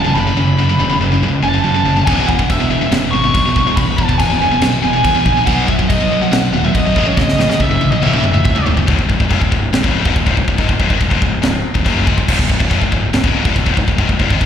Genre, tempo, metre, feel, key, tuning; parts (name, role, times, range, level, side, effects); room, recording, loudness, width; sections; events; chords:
heavy metal; 141 BPM; 4/4; straight; C# minor; A4 = 440 Hz
bluesy overdriven lead guitar; melody; 0.0-8.7 s; C#5 to C#6; -18 LUFS; right 1 dB; distortion, slapback echo, digital delay
heavy high-gain guitar; riff; 0.0-14.5 s; C#2 to B3; -18 LUFS; left 9 dB; distortion, slapback echo
high-gain distorted guitar; riff; 0.0-8.9 s; C#2 to B3; -19 LUFS; right 8 dB; distortion, slapback echo
fuzz fingered electric bass; bass; 0.0-14.5 s; C#1 to A2; -18 LUFS; equal; overdrive
modern studio drum kit; drums; 2.1-14.5 s; china cymbal, crash cymbal, kick drum, snare drum, toms; -17 LUFS; equal
studio reverb; live gig heard through the venue's PA, recital hall reverb; -12 LUFS; side -9 dB against mid
0.0-8.9 A section; 8.9-14.5 B section
drum fill 7.2-8.9
0.0 F#m; 2.1 E; 5.5 B; 7.0 F#m/A; 8.0 C#m; 8.9 C#5